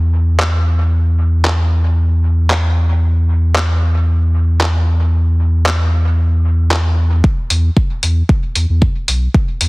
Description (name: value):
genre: dub techno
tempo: 114 BPM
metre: 4/4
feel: straight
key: unclear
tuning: A4 = 440 Hz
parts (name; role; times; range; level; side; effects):
- pure sine sub bass; bass; 0.0-9.7 s; B1 to E2; -12 LUFS; equal; sidechain pumping
- lo-fi sampler-style drum kit; drums; 0.4-9.7 s; handclaps, hi-hat; -19 LUFS; equal; overdrive, studio reverb, dub echo
- electronic kick drum; drums; 7.2-9.5 s; none; -13 LUFS; equal; studio reverb
room: little or no reverb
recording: heavily compressed radio sound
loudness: -12 LUFS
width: side -25 dB against mid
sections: 0.0-7.2 A section; 7.2-9.7 B section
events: none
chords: none